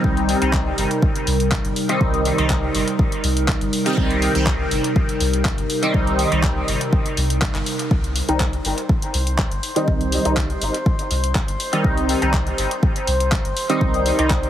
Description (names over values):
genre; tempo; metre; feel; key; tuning
dub techno; 122 BPM; 4/4; straight; C minor; A4 = 440 Hz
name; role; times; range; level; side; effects
warbly tape-like pad; sustained chords; 0.0-7.9 s; C3 to Bb4; -24 LUFS; right 1 dB; chorus, built-in reverb, sidechain pumping
resonant sweep polysynth; stabs; 0.0-14.3 s; Eb3 to Eb4; -22 LUFS; equal; chorus, phaser, sidechain pumping, dub echo
soft dub sub bass; bass; 0.0-14.5 s; G1 to C2; -24 LUFS; equal; tube saturation, sidechain pumping
electronic kick drum; drums; 0.0-14.4 s; none; -20 LUFS; equal; none
deep house drum kit; drums; 0.2-14.5 s; handclaps, hi-hat; -26 LUFS; left 1 dB; dub echo
drifting glass-harmonics texture; texture; 8.8-14.5 s; C5; -28 LUFS; equal; chorus, built-in reverb, sidechain pumping
room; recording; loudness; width
light reverb, digital ambience; heavily compressed radio sound, multiband compression; -17 LUFS; side -11 dB against mid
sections
0.0-7.9 A section; 7.9-14.5 A section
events
band accent 7.4; filter sweep on analog polysynth 7.9-14.5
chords
0.0 Cm